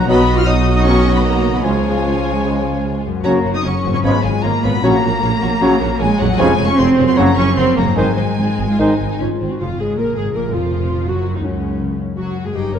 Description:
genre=classical, dramatic, fast romantic movement for symphony orchestra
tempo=145-166 BPM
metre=4/4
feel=straight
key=F# major, Db major from 6.4 s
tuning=A4 = 439 Hz
part: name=rich chamber violin section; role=melody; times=0.0-12.8 s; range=Db4 to E#6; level=-26 LUFS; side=left 6 dB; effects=none
part: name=dark clarinet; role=second line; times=0.0-12.8 s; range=Db4 to Bb4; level=-24 LUFS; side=left 2 dB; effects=none
part: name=hollow concert flute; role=second line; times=0.0-9.2 s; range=F#5 to E#6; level=-26 LUFS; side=left 1 dB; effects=none
part: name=rich symphonic violin section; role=second line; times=0.0-12.8 s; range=C4 to D#5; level=-27 LUFS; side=left 3 dB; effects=none
part: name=warm oboe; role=second line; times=0.0-8.9 s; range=C5 to D#5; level=-29 LUFS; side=right 2 dB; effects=none
part: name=clear symphonic viola section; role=accompaniment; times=0.0-12.8 s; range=Db3 to E#4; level=-23 LUFS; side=right 3 dB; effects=none
part: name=dark bassoon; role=accompaniment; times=0.0-8.9 s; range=Eb3 to F#3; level=-24 LUFS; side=right 3 dB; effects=none
part: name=concert harp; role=arpeggios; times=0.0-12.8 s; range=F2 to D#5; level=-22 LUFS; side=left 8 dB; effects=none
part: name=dark tuba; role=bass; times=0.0-9.5 s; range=F1 to C#2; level=-23 LUFS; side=right 3 dB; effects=none
part: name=rich symphonic double bass section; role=bass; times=0.0-12.8 s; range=F1 to C#2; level=-22 LUFS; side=right 3 dB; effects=none
part: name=warm symphonic cello section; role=bass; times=0.0-12.8 s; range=Db2 to E#4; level=-22 LUFS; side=right 2 dB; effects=none
part: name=clear trombone section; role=sustained chords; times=0.1-8.9 s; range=C#3 to G#3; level=-27 LUFS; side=right 4 dB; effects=none
part: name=mellow French horn section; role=sustained chords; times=0.1-8.9 s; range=B3 to F#4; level=-23 LUFS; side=left 4 dB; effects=none
room=moderate scoring stage reverb, RT60 2.0 s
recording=dark, warm production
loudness=-13 LUFS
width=side -8 dB against mid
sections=0.0-9.6 A section; 9.6-12.8 B section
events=none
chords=0.1 B; 1.6 C#; 3.2 F#; 4.0 C#7/G#; 4.8 F#/A#; 6.4 Db/F; 7.2 Gb; 8.0 Ab; 9.6 Db/F; 11.1 Gb5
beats=| 0.08 0.47 0.85 1.25 | 1.65 2.05 2.45 2.85 | 3.25 3.65 4.04 4.44 | 4.83 5.23 5.61 6.00 | 6.39 6.78 7.17 7.57 | 7.97 8.38 8.79 9.20 | 9.61 9.98 10.35 10.71 | 11.08 11.45 11.82 12.18 | 12.55

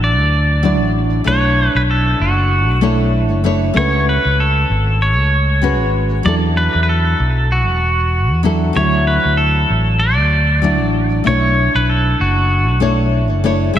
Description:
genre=sunset chillout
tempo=96 BPM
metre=4/4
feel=swing 57% on 16ths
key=B dorian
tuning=A4 = 440 Hz
part: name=pedal steel guitar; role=melody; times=0.0-13.8 s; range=F#4 to D5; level=-18 LUFS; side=equal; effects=ping-pong delay
part: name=nylon-string guitar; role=accompaniment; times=0.0-13.8 s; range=C#3 to E5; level=-19 LUFS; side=left 1 dB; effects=auto-pan, ping-pong delay
part: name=fretless electric bass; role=bass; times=0.0-13.8 s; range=E1 to E2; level=-16 LUFS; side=equal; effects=none
room=moderate lush hall reverb, RT60 2.6 s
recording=dreamy mix soaked in reverb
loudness=-12 LUFS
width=side -10 dB against mid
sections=0.0-13.8 A section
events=none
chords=0.0 Dadd9; 1.3 Bm11; 3.8 Amaj13; 6.3 E9sus4; 8.8 Dadd9; 11.3 Bm11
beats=0.01 0.63 | 1.26 1.88 2.51 3.13 | 3.76 4.38 5.01 5.63 | 6.26 6.88 7.51 8.13 | 8.76 9.38 10.01 10.63 | 11.26 11.88 12.51 13.13 | 13.76

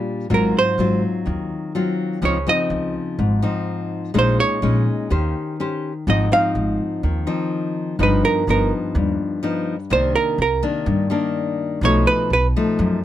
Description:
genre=bossa nova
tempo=125 BPM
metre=4/4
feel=straight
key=unclear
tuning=A4 = 440 Hz
part: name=nylon-string guitar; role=accompaniment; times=0.0-13.0 s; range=F#2 to C5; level=-21 LUFS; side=left 3 dB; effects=none
part: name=archtop guitar, miked and amplified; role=melody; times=0.3-12.5 s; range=Bb4 to F5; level=-19 LUFS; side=right 4 dB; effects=none
part: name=upright bass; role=bass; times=0.3-13.0 s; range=G1 to G2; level=-22 LUFS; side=right 1 dB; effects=none
room=little or no reverb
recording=close, detailed microphones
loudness=-18 LUFS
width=side -12 dB against mid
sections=0.0-13.0 A section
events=hollow-body jazz guitar solo 0.0-13.0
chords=0.3 Ab6; 2.2 Dbmaj9; 4.2 Bbm7; 5.1 Eb6; 6.1 Ab6; 8.0 Gaug7; 9.9 Cm9; 11.8 B7#11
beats=| 0.31 0.79 1.27 1.75 | 2.23 2.71 3.19 3.67 | 4.15 4.63 5.11 5.59 | 6.07 6.55 7.03 7.51 | 7.99 8.47 8.95 9.43 | 9.91 10.39 10.87 11.35 | 11.82 12.30 12.78

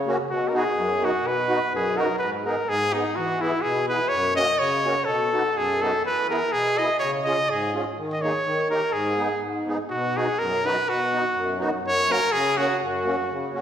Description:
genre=alpine folk, alpine dance band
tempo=125 BPM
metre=2/4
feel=swing 53% on 8ths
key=G# minor, B major from 9.9 s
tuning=A4 = 440 Hz
part: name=musette accordion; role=accompaniment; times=0.0-13.6 s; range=F#2 to G#4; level=-26 LUFS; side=equal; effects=none
part: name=bright trumpet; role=melody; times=0.3-13.5 s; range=D#4 to D#5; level=-23 LUFS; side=equal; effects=none
room=wet scoring stage reverb, RT60 1.7 s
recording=recorded in a church or concert hall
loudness=-21 LUFS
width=side -9 dB against mid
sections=0.0-2.2 A section; 2.2-9.9 B section; 9.9-13.6 A section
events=none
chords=0.3 B; 2.2 G#m; 3.2 E; 4.1 F#; 5.1 B7; 6.0 E; 7.0 C#; 8.0 D#7sus4; 8.4 D#7; 8.9 G#m; 9.9 B; 11.8 F#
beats=| 0.29 0.76 | 1.23 1.71 | 2.20 2.68 | 3.16 3.63 | 4.11 4.59 | 5.07 5.55 | 6.04 6.53 | 7.01 7.49 | 7.96 8.44 | 8.92 9.41 | 9.90 10.39 | 10.88 11.36 | 11.84 12.32 | 12.80 13.29

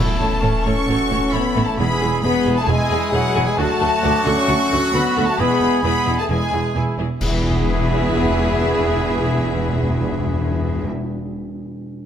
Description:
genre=cinematic, heroic adventure film score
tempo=132 BPM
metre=4/4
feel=straight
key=E major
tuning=A4 = 440 Hz
part: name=bright studio violin section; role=melody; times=0.0-10.9 s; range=E5 to C#6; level=-28 LUFS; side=left 2 dB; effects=none
part: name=mellow cor anglais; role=second line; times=0.0-10.9 s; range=C#4 to B4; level=-28 LUFS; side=right 2 dB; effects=none
part: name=mellow hollow flute section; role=second line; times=0.0-10.9 s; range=E5 to C#6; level=-28 LUFS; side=left 1 dB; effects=none
part: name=warm symphonic violin section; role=second line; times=0.0-10.9 s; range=E5 to C#6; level=-30 LUFS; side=left 4 dB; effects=none
part: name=rich symphonic viola section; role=accompaniment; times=0.0-10.9 s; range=E4 to C#5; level=-28 LUFS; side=equal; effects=none
part: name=clear trombone section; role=sustained chords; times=0.0-10.9 s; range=E3 to C#4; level=-29 LUFS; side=right 4 dB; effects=none
part: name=mellow French horn section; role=sustained chords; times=0.0-10.9 s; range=E3 to C#4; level=-24 LUFS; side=left 4 dB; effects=none
part: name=clear trumpet section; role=stabs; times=0.0-10.9 s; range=F#4 to A4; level=-26 LUFS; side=right 1 dB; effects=none
part: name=rich symphonic cello section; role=bass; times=0.0-10.9 s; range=D2 to A2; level=-26 LUFS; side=right 2 dB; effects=none
part: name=warm symphonic double bass section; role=bass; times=0.0-10.9 s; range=E1 to D2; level=-25 LUFS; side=right 3 dB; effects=none
part: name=timpani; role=percussion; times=1.8-2.4, 7.2-10.9 s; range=E2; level=-24 LUFS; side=left 2 dB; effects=none
part: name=bright clarinet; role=second line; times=7.2-10.9 s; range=G#4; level=-30 LUFS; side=left 2 dB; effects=none
part: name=clash cymbals and concert bass drum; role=percussion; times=7.2-8.1 s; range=none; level=-27 LUFS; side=equal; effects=none
room=moderate scoring stage reverb, RT60 1.9 s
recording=none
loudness=-16 LUFS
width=side -9 dB against mid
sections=0.0-7.2 A section; 7.2-10.9 B section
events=band accent 7.2-7.7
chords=0.0 A; 1.8 E; 3.6 D; 5.4 E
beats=0.42 0.88 1.33 | 1.78 2.23 2.68 3.13 | 3.58 4.04 4.49 4.94 | 5.39 5.84 6.30 6.76 | 7.22 7.67 8.13 8.58 | 9.04 9.49 9.94 10.40

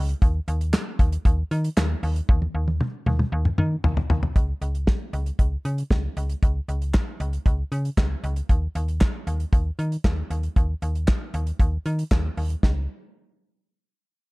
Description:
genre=synth-pop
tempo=116 BPM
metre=4/4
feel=straight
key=unclear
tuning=A4 = 441 Hz
part: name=slap-like FM bass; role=bass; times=0.0-12.9 s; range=Db2 to Eb3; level=-25 LUFS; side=equal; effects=none
part: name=damped 70s drum kit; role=drums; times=0.1-12.8 s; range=handclaps, hi-hat, kick drum, snare drum, toms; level=-22 LUFS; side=equal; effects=none
room=little or no reverb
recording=dark, warm production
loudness=-21 LUFS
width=side -24 dB against mid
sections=0.0-4.4 A section; 4.4-12.6 B section; 12.6-14.3 C section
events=drum fill 2.3-4.4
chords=none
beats=| 0.22 0.74 1.25 1.77 | 2.29 2.81 3.32 3.84 | 4.36 4.87 5.39 5.91 | 6.42 6.94 7.46 7.98 | 8.49 9.01 9.53 10.05 | 10.56 11.08 11.60 12.12 | 12.63

